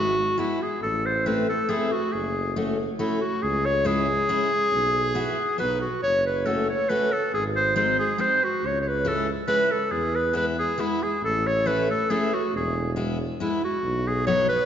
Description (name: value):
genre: alpine folk, alpine dance band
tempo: 138 BPM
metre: 3/4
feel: straight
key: E major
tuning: A4 = 440 Hz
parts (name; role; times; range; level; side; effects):
- clear clarinet; melody; 0.0-14.7 s; E4 to C#5; -23 LUFS; equal; none
- picked steel-string acoustic guitar; accompaniment; 0.0-14.5 s; F#3 to F#4; -29 LUFS; left 2 dB; none
- mellow tuba; bass; 0.0-14.7 s; E1 to E2; -30 LUFS; equal; none
room: wet scoring stage reverb, RT60 2.0 s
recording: recorded in a church or concert hall, nothing above 7.7 kHz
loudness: -22 LUFS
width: side -9 dB against mid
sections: 0.0-14.7 A section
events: none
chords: 0.0 Eadd9/G#; 0.8 Am; 2.1 F#m; 3.4 C#m; 4.7 Bsus4; 5.6 B; 6.0 F#m; 7.3 G#; 8.6 C#m; 9.9 E; 11.2 A; 12.5 E; 13.8 B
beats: 0.38 | 0.82 1.25 1.69 | 2.13 2.56 2.99 | 3.43 3.86 4.29 | 4.73 5.16 5.60 | 6.04 6.47 6.91 | 7.34 7.77 8.20 | 8.63 9.06 9.50 | 9.93 10.36 10.79 | 11.23 11.67 12.10 | 12.54 12.97 13.40 | 13.83 14.27